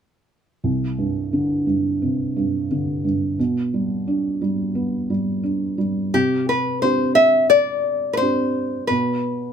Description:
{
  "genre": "folk",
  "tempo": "87 BPM",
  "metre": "4/4",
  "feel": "straight",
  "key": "unclear",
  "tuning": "A4 = 435 Hz",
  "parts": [
    { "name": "felt-muted upright piano", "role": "accompaniment", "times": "0.6-9.5 s", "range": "C2 to G4", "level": "-21 LUFS", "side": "right 2 dB", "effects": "none" },
    { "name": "nylon-string guitar", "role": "melody", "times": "6.1-9.5 s", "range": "G4 to E5", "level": "-18 LUFS", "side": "left 2 dB", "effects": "none" }
  ],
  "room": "light reverb",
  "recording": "none",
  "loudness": "-18 LUFS",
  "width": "side -7 dB against mid",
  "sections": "0.6-6.1 A section; 6.1-9.5 B section",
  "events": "none",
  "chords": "0.6 Csus2; 3.4 G/B; 6.1 Csus2; 8.9 N.C."
}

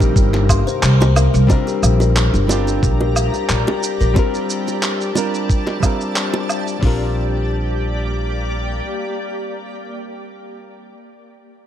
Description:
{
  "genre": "sunset chillout",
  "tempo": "90 BPM",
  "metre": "4/4",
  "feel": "swing 53% on 16ths",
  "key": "Bb major",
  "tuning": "A4 = 440 Hz",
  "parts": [
    { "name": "dark baby grand piano", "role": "melody", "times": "0.0-0.8 s", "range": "none", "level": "barely audible", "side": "none", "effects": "none" },
    { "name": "flamenco guitar", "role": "accompaniment", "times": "0.0-11.0 s", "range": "G3 to Bb4", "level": "-24 LUFS", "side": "moving between left 7 dB and right 5 dB", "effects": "auto-pan, low-pass filter, tape echo, shimmer reverb" },
    { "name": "shimmering ambient pad", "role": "sustained chords", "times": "0.0-10.3 s", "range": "C3 to Bb5", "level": "-27 LUFS", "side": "equal", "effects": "chorus, built-in reverb, vintage 12-bit sampler grit, shimmer reverb" },
    { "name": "kalimba", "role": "arpeggios", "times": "0.0-7.1 s", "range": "G4 to C6", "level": "-25 LUFS", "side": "left 6 dB", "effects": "tape echo, shimmer reverb" },
    { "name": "upright bass", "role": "bass", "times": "0.0-8.8 s", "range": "G1 to C2", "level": "-17 LUFS", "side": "equal", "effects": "none" },
    { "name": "dusty soul sampler-style drum kit", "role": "drums", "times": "0.0-7.0 s", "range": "hi-hat, kick drum", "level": "-16 LUFS", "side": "equal", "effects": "none" },
    { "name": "electronic shaker, handclaps and woodblock", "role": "drums", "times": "0.0-6.8 s", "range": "none", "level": "-23 LUFS", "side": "right 1 dB", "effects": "none" },
    { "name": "bongos", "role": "percussion", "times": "0.3-6.5 s", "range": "none", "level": "-25 LUFS", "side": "right 2 dB", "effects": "none" }
  ],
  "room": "light reverb",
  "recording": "dark, warm production",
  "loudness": "-15 LUFS",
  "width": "side -10 dB against mid",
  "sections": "0.0-1.5 A section; 1.5-6.8 B section; 6.8-9.5 C section",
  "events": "band accent 0.8-1.2; filter sweep on nylon-string guitar 1.5-6.8",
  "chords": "0.0 Cm7; 1.5 Bb6"
}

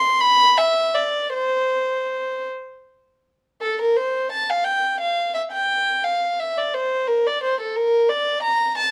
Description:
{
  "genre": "classical, baroque-style suite movement for unaccompanied violin",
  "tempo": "52-59 BPM (dotted quarters)",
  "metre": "6/8",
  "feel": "rubato",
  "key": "C major, F major from 3.6 s",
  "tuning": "A4 = 439 Hz",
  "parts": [
    { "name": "warm violin", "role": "solo", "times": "0.0-8.9 s", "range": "A4 to C6", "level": "-21 LUFS", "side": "equal", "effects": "none" }
  ],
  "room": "moderate stone room reverb, RT60 0.9 s",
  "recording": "none",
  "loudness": "-21 LUFS",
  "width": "mono",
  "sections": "0.0-3.6 A section; 3.6-8.9 A section",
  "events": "none",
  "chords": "none"
}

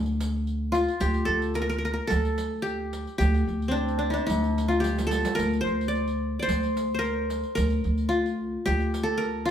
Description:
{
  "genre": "Arabic maqam ensemble",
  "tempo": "110 BPM",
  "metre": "4/4",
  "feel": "straight",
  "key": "D maqam bayati",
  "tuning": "A4 = 440 Hz",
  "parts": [
    { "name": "qanun", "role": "melody", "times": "0.0-9.5 s", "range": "C4 to D5", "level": "-27 LUFS", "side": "equal", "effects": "none" },
    { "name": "upright bass", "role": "bass", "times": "0.0-9.5 s", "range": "D2", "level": "-27 LUFS", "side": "equal", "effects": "none" },
    { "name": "riq", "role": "percussion", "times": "0.1-9.3 s", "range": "none", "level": "-36 LUFS", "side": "right 3 dB", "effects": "none" }
  ],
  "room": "moderate studio reverb, RT60 0.9 s",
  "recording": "band playing live in one room",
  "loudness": "-24 LUFS",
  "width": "side -9 dB against mid",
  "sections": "0.0-9.5 A section",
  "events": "drum fill 4.8-5.4",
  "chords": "none"
}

